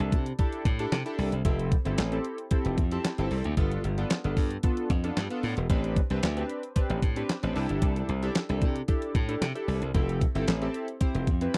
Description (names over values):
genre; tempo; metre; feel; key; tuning
early-eighties boogie funk; 113 BPM; 4/4; straight; unclear; A4 = 441 Hz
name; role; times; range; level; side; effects
chorused polysynth; accompaniment; 0.0-11.6 s; B3 to C5; -35 LUFS; equal; none
glassy slap bass; bass; 0.0-11.5 s; E1 to C3; -32 LUFS; equal; none
crisp 8-bit digital drum machine; drums; 0.0-11.6 s; handclaps, hi-hat, kick drum, snare drum; -29 LUFS; equal; none
room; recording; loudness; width
little or no reverb; dry, close 1970s-style studio recording; -28 LUFS; mono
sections
0.0-11.6 A section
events
none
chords
0.0 C69; 1.4 Fmaj9; 3.6 G9; 5.7 Am11; 7.6 C69; 9.9 Fmaj9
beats
0.39 0.92 | 1.45 1.98 2.51 3.04 | 3.57 4.10 4.63 5.17 | 5.70 6.23 6.76 7.29 | 7.82 8.35 8.88 9.41 | 9.94 10.47 11.01 11.54